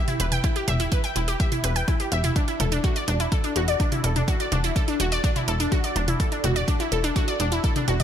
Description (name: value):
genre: melodic techno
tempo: 125 BPM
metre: 4/4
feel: straight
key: unclear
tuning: A4 = 440 Hz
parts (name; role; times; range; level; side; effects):
- wide unison pluck; arpeggios; 0.1-8.0 s; D4 to G5; -25 LUFS; equal; phaser, vintage 12-bit sampler grit, sidechain pumping, digital delay
- house drum kit; drums; 0.1-8.0 s; hi-hat, toms; -30 LUFS; equal; none
- plucky analog bass; bass; 0.2-8.0 s; E1; -25 LUFS; equal; sidechain pumping
- electronic kick drum; drums; 0.4-7.7 s; none; -24 LUFS; equal; none
room: light reverb, digital ambience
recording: bright 1980s-style digital production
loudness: -21 LUFS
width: side -9 dB against mid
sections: 0.0-8.0 A section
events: none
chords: 0.0 Em; 2.4 Dadd9/E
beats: | 0.44 0.92 1.40 1.88 | 2.36 2.84 3.32 3.80 | 4.28 4.76 5.24 5.72 | 6.20 6.68 7.16 7.64